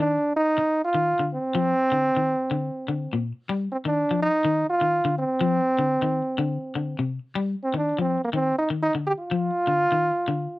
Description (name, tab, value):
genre	afrobeat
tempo	124 BPM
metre	4/4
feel	straight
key	unclear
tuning	A4 = 440 Hz
part	clear trombone	melody	0.0-10.6 s	Bb3 to G4	-22 LUFS	right 1 dB	none
part	electric guitar at the edge of break-up	arpeggios	0.0-10.5 s	Bb2 to G3	-27 LUFS	left 3 dB	none
room	light reverb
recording	dry, close 1970s-style studio recording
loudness	-22 LUFS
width	side -18 dB against mid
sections	0.0-10.6 A section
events	none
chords	0.0 N.C.; 1.5 Bbadd9; 3.5 Fsus2; 5.4 Cmadd9; 7.4 Fsus2; 9.3 Cmadd11 (rootless)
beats	0.09 0.57 1.05 | 1.54 2.02 2.51 2.99 | 3.48 3.96 4.45 4.93 | 5.42 5.90 6.39 6.88 | 7.36 7.85 8.33 8.82 | 9.30 9.79 10.28